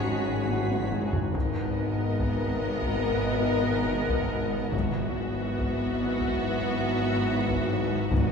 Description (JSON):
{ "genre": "cinematic, suspense film score", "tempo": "71 BPM", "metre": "4/4", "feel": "straight", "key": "unclear", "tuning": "A4 = 440 Hz", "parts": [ { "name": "warm studio violin section", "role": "melody", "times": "0.0-8.3 s", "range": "C#5 to E5", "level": "-38 LUFS", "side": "left 1 dB", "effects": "none" }, { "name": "rich studio violin section", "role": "second line", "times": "0.0-8.3 s", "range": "F#4 to A#4", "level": "-34 LUFS", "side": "left 1 dB", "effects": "none" }, { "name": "rich studio viola section", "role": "accompaniment", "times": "0.0-8.3 s", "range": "B3 to F#4", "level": "-33 LUFS", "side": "left 1 dB", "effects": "none" }, { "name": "bright trombone section", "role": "sustained chords", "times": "0.0-8.3 s", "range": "B2 to G#3", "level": "-37 LUFS", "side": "right 2 dB", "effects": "none" }, { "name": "mellow French horn section", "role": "sustained chords", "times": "0.0-8.3 s", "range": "B3 to A#4", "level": "-33 LUFS", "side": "left 1 dB", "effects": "none" }, { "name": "concert harp", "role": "riff", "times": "0.0-8.3 s", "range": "G#2 to G#3", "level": "-34 LUFS", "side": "left 4 dB", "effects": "none" }, { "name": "rich studio cello section", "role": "bass", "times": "0.0-8.3 s", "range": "G#2", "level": "-35 LUFS", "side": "equal", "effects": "none" }, { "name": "rich studio double bass section", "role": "bass", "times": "0.0-8.3 s", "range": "G#1", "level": "-35 LUFS", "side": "right 2 dB", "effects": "none" }, { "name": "swarming drone", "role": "drone", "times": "0.0-8.3 s", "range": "G#1", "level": "-35 LUFS", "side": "equal", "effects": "built-in reverb" }, { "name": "felt-muted upright piano", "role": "texture", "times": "0.0-4.8 s", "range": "E4 to F#5", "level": "-42 LUFS", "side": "right 1 dB", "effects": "none" }, { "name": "warm studio violin section", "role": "texture", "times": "0.0-0.9, 8.1-8.3 s", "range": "D#6 to B6", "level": "-45 LUFS", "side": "equal", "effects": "none" }, { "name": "taiko ensemble", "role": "drums", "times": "0.5-8.3 s", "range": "none", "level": "-33 LUFS", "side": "left 1 dB", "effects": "none" }, { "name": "timpani", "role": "percussion", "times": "4.7-8.3 s", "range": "G#2", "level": "-33 LUFS", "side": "equal", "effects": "none" } ], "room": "wet scoring stage reverb, RT60 2.0 s", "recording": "recorded in a church or concert hall", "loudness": "-25 LUFS", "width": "side -6 dB against mid", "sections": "0.0-8.3 A section", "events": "drum fill 0.5-1.3", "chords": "0.0 C#sus4/G#; 1.3 G#madd9; 4.7 F#7sus4/G#", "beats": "0.50 | 1.35 2.19 3.04 3.88 | 4.73 5.57 6.42 7.26 | 8.11" }